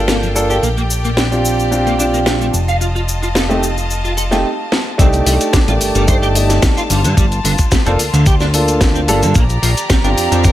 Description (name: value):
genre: nu-disco, nu disco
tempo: 110 BPM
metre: 4/4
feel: straight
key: C dorian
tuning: A4 = 440 Hz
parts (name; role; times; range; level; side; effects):
- dark grand piano; accompaniment; 0.0-10.5 s; Eb3 to A4; -18 LUFS; right 1 dB; sidechain pumping, dub echo
- bright studio violin section; sustained chords; 0.0-10.5 s; F4 to Bb5; -24 LUFS; left 2 dB; sidechain pumping
- fat analog bass; bass; 0.0-10.5 s; F1 to G2; -17 LUFS; equal; none
- electric guitar at the edge of break-up; riff; 0.1-10.5 s; D3 to F5; -22 LUFS; right 1 dB; ensemble chorus, dub echo
- house drum kit; drums; 0.1-10.5 s; hi-hat, shaker, snare drum; -19 LUFS; equal; none
- electronic kick drum; drums; 5.0-10.5 s; none; -13 LUFS; equal; overdrive
- maracas; percussion; 5.0-10.5 s; none; -26 LUFS; left 1 dB; none
room: light reverb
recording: none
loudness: -12 LUFS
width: side -13 dB against mid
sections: 0.0-5.0 A section; 5.0-10.5 B section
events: filter sweep on clean electric guitar 0.0-5.0; drum fill 4.7; drop 5.0-10.5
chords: 0.0 Gm9; 0.6 Bb6; 2.5 F7; 5.0 Cm69; 6.9 Gm9; 9.4 Bb6